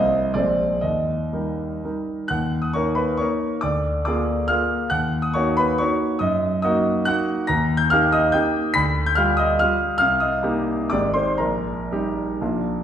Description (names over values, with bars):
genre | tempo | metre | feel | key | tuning
classical, romantic triple-time dance for piano with dotted rhythms | 113-150 BPM | 3/4 | rubato | Eb minor, Eb major from 7.5 s | A4 = 443 Hz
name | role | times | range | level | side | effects
clear concert grand piano | solo | 0.0-12.8 s | Ab1 to B6 | -19 LUFS | equal | none
room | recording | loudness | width
wet recital hall reverb, RT60 1.4 s | recorded in a church or concert hall | -19 LUFS | side -9 dB against mid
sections
0.0-2.3 A section; 2.3-12.8 B section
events
none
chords
0.4 Bb9; 0.8 Eb; 2.3 Ebm; 3.6 Bb7/D; 4.9 Ebm; 6.2 Ebm/Gb; 7.5 Eb; 8.7 G7/D; 10.0 Cm7; 10.9 Abmaj7; 11.4 Eb/Bb